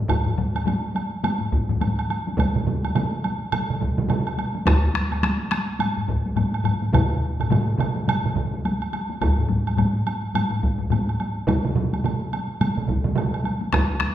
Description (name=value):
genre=japanese traditional, taiko drum ensemble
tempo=106 BPM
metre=4/4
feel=swing 60% on 16ths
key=none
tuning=none
part: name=taiko ensemble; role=percussion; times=0.1-14.1 s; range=none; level=-26 LUFS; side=left 1 dB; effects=none
part: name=taiko ensemble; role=percussion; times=0.1-14.1 s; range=none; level=-26 LUFS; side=left 3 dB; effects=none
part: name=taiko ensemble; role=percussion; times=0.1-13.9 s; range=none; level=-25 LUFS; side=equal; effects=none
part: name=woodblock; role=percussion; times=0.1-13.9 s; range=none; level=-30 LUFS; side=right 4 dB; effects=none
part: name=solo taiko drums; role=percussion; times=2.4-13.3 s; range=none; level=-25 LUFS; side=right 4 dB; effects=none
room=wet recital hall reverb, RT60 1.5 s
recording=recorded in a church or concert hall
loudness=-21 LUFS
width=side -12 dB against mid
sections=0.1-14.1 A section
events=none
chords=none